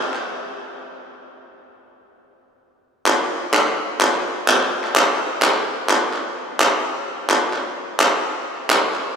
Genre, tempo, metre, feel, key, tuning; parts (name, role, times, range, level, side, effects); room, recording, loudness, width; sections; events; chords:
folk; 128 BPM; 3/4; straight
group handclap; percussion; 0.0-0.2, 3.1-9.0 s; -18 LUFS; equal
wet huge ambient reverb, RT60 4.5 s; dreamy mix soaked in reverb; -17 LUFS; side -6 dB against mid
0.3-5.9 A section; 5.9-9.2 B section